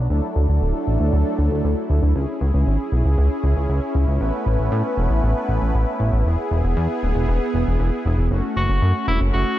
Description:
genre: synthwave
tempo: 117 BPM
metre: 4/4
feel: straight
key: unclear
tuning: A4 = 440 Hz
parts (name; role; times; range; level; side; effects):
- soft supersaw; sustained chords; 0.0-9.6 s; F#3 to B4; -24 LUFS; equal; phaser
- chorused synth bass; bass; 0.0-9.4 s; D1 to A2; -18 LUFS; equal; none
- clear tenor saxophone; melody; 8.6-9.6 s; E4 to F#4; -25 LUFS; left 1 dB; none
room: light reverb, small room ambience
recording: dark, warm production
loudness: -18 LUFS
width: side -14 dB against mid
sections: 0.1-8.3 A section; 8.3-9.6 B section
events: none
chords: 0.1 Dadd9; 2.2 C#m; 4.2 Aadd9; 6.3 E; 8.3 F#m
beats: | 0.10 0.62 1.13 1.64 | 2.15 2.67 3.18 3.69 | 4.21 4.72 5.23 5.74 | 6.26 6.77 7.28 7.80 | 8.31 8.82 9.33

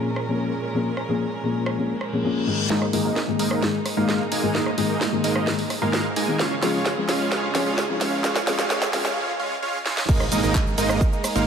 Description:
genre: EDM, festival progressive house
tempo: 130 BPM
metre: 4/4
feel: straight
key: unclear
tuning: A4 = 440 Hz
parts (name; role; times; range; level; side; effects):
- felt-muted upright piano; accompaniment; 0.0-9.1 s; Ab2 to Ab4; -25 LUFS; left 4 dB; sidechain pumping, ping-pong delay
- warm chamber string section; sustained chords; 0.0-11.5 s; Bb2 to Bb4; -31 LUFS; right 3 dB; sidechain pumping, low-pass filter
- house drum kit; drums; 0.2-11.4 s; crash cymbal, handclaps, hi-hat, ride cymbal, rim click, shaker, snare drum; -26 LUFS; right 1 dB; none
- reverse cymbal, riser and impact; sound effects; 2.0-11.5 s; none; -35 LUFS; right 1 dB; none
- dense compressed supersaw; riff; 2.7-11.5 s; Ab3 to Ab5; -25 LUFS; right 2 dB; sidechain pumping, low-pass filter, ping-pong delay
- fat analog bass; bass; 2.7-11.5 s; Ab1 to Ab2; -33 LUFS; right 1 dB; none
- electronic kick drum; drums; 10.1-11.1 s; none; -21 LUFS; right 1 dB; none
room: moderate lush hall reverb, RT60 2.5 s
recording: high-pass filter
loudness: -20 LUFS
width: side -7 dB against mid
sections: 0.0-2.7 A section; 2.7-10.1 B section; 10.1-11.5 C section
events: reverse cymbal 2.0-2.7; build-up 2.7-10.1; drum fill 2.7-9.2, 9.9; filter sweep on supersaw synth 2.7-10.1; filter sweep 2.7-10.1; break 9.2-10.1; drop 10.1-11.5; impact 10.1-11.5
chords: 0.0 Bbm7; 2.7 Absus2; 6.4 Db; 10.1 Absus2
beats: 0.39 | 0.86 1.32 1.78 2.24 | 2.70 3.16 3.62 4.09 | 4.55 5.01 5.47 5.93 | 6.39 6.86 7.32 7.78 | 8.24 8.70 9.16 9.62 | 10.09 10.55 11.01

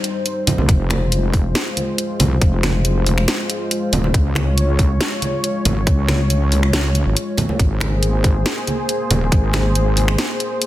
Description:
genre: deep dubstep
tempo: 139 BPM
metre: 4/4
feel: half-time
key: F minor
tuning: A4 = 439 Hz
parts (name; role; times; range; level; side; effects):
- dark analog pad; sustained chords; 0.0-10.7 s; G3 to Db5; -23 LUFS; left 1 dB; chorus
- garage drum kit; drums; 0.0-10.7 s; finger snaps, hi-hat, snare drum; -22 LUFS; equal; small room ambience, soft clipping on snare
- congas; percussion; 0.5-10.1 s; none; -24 LUFS; right 1 dB; dub echo
- wobble bass; bass; 0.6-10.2 s; Eb1 to Db2; -17 LUFS; equal; chorus
- electronic kick drum; drums; 0.7-9.4 s; none; -15 LUFS; equal; small room ambience
room: light reverb, digital ambience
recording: dense, heavily limited modern master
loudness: -15 LUFS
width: side -14 dB against mid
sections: 0.0-10.7 A section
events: none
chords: 0.0 Cm; 0.7 Fm; 4.1 Db; 7.6 Abadd9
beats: 0.26 | 0.69 1.12 1.55 1.98 | 2.42 2.85 3.28 3.71 | 4.14 4.57 5.00 5.44 | 5.87 6.30 6.73 7.16 | 7.59 8.03 8.46 8.89 | 9.32 9.75 10.19 10.62

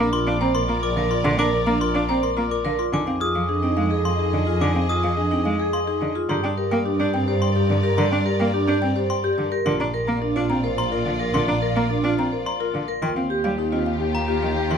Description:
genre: classical, minimalist pattern music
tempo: 107 BPM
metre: 3/4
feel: straight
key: F dorian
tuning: A4 = 441 Hz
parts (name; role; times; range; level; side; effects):
- buzzing marimba with medium mallets; melody; 0.0-14.8 s; G4 to C6; -27 LUFS; left 8 dB; none
- clear cello; accompaniment; 0.0-14.8 s; D3 to D4; -25 LUFS; right 1 dB; none
- rich symphonic violin section; sustained chords; 0.0-14.8 s; F4 to Eb5; -30 LUFS; left 4 dB; none
- vibraphone with medium hard mallets; arpeggios; 0.0-14.8 s; D4 to C5; -26 LUFS; right 5 dB; none
- rich studio double bass section; bass; 0.0-14.8 s; Bb1 to G2; -26 LUFS; right 2 dB; none
- glockenspiel with brass mallets; arpeggios; 0.1-14.8 s; Bb5 to Eb6; -29 LUFS; left 3 dB; none
room: moderate large studio reverb, RT60 0.9 s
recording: minimal, uncompressed stereo recording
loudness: -19 LUFS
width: side -7 dB against mid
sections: 0.0-2.9 A section; 2.9-14.8 B section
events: none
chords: 0.0 Bb; 2.9 Fm7; 6.3 Gm; 9.7 Bb; 13.0 Ebadd9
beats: 0.12 0.69 | 1.25 1.81 2.37 | 2.93 3.49 4.05 | 4.61 5.17 5.73 | 6.29 6.85 7.42 | 7.97 8.54 9.10 | 9.66 10.22 10.78 | 11.34 11.90 12.46 | 13.02 13.58 14.14 | 14.70

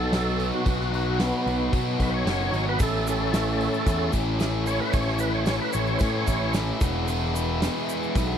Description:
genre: classic rock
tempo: 112 BPM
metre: 4/4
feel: straight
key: unclear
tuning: A4 = 440 Hz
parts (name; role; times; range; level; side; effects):
- overdriven tonewheel organ; melody; 0.0-6.5 s; B3 to C#5; -28 LUFS; right 1 dB; slow rotary speaker, chorus vibrato
- soft string machine; sustained chords; 0.0-8.4 s; F#3 to C#5; -36 LUFS; right 1 dB; none
- biting overdriven guitar; riff; 0.0-8.4 s; E2 to F#4; -27 LUFS; left 1 dB; none
- fuzz picked electric bass; bass; 0.0-8.4 s; E1 to B2; -28 LUFS; equal; overdrive
- huge arena drum kit; drums; 0.1-8.3 s; hi-hat, kick drum, snare drum; -28 LUFS; equal; none
- egg shaker; percussion; 2.8-8.3 s; none; -41 LUFS; right 10 dB; none
room: small room ambience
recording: dry, close 1970s-style studio recording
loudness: -22 LUFS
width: side -8 dB against mid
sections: 0.0-8.4 A section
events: tonewheel organ solo 0.0-8.4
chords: 0.0 B; 2.8 A; 6.8 E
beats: 0.13 | 0.67 1.20 1.74 2.27 | 2.81 3.34 3.88 4.41 | 4.95 5.48 6.01 6.55 | 7.08 7.62 8.15

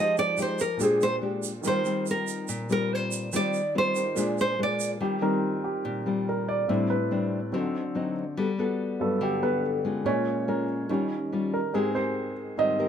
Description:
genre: bossa nova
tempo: 143 BPM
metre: 4/4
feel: straight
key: Eb major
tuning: A4 = 440 Hz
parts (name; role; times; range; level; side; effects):
- nylon-string guitar; melody; 0.0-4.9 s; Ab4 to Eb5; -26 LUFS; right 1 dB; none
- nylon-string guitar; accompaniment; 0.0-12.9 s; A2 to Bb4; -29 LUFS; left 3 dB; none
- warm baby grand piano; accompaniment; 0.0-12.9 s; G2 to Eb5; -28 LUFS; right 2 dB; none
- tube shaker; percussion; 0.2-5.0 s; none; -36 LUFS; right 10 dB; none
room: light reverb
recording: none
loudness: -25 LUFS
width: side -8 dB against mid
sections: 0.0-5.0 A section; 5.0-12.9 A section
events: nylon-string guitar solo 0.0-5.0; grand piano solo 5.0-12.9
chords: 0.0 Fm9; 0.8 Bb13; 1.6 Eb69; 4.2 Bb7; 5.0 Eb69; 6.7 Am11; 7.5 D7b9; 8.4 Gmaj9; 10.0 Bbm7; 10.9 Eb9; 11.7 Abmaj9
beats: 0.38 0.80 1.22 | 1.64 2.06 2.48 2.90 | 3.32 3.74 4.16 4.58 | 5.00 5.42 5.84 6.26 | 6.68 7.11 7.53 7.95 | 8.37 8.79 9.21 9.63 | 10.05 10.47 10.89 11.31 | 11.73 12.15 12.57

